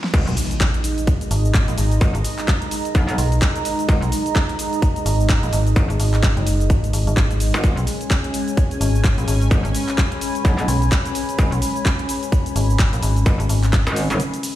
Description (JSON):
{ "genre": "bass house", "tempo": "128 BPM", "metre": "4/4", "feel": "swing 59% on 16ths", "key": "G# minor", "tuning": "A4 = 438 Hz", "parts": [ { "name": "big-room dance drum kit", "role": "drums", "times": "0.0-14.5 s", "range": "crash cymbal, handclaps, hi-hat, shaker, snare drum", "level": "-26 LUFS", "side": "equal", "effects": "overdrive" }, { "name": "sweeping resonant pad", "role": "sustained chords", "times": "0.1-14.6 s", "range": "G#3 to G#5", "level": "-25 LUFS", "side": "equal", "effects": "chorus, sidechain pumping" }, { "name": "metallic wobble bass", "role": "bass", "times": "0.1-14.2 s", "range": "F#1 to B1", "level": "-21 LUFS", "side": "equal", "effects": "distortion, chorus, sidechain pumping" }, { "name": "electronic kick drum", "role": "drums", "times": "0.1-13.8 s", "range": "none", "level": "-17 LUFS", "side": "equal", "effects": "none" }, { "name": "impact", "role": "sound effects", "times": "0.1-2.0 s", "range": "none", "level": "-26 LUFS", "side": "equal", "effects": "none" }, { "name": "metallic FM bass", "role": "bass", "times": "0.3-13.8 s", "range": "F#1 to B1", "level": "-19 LUFS", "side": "equal", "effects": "tube saturation, sidechain pumping" }, { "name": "deep dark ambient pad", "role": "texture", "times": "1.9-14.6 s", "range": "A#5 to B5", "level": "-31 LUFS", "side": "right 2 dB", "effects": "chorus, built-in reverb, sidechain pumping" } ], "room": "digital ambience", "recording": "played on a big sound system in a bare room, stone room reverb", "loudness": "-16 LUFS", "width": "side -14 dB against mid", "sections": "0.1-14.6 A section", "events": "drop 0.1-14.6; impact 0.1-2.0; break 14.2-14.6", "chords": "0.1 G#5" }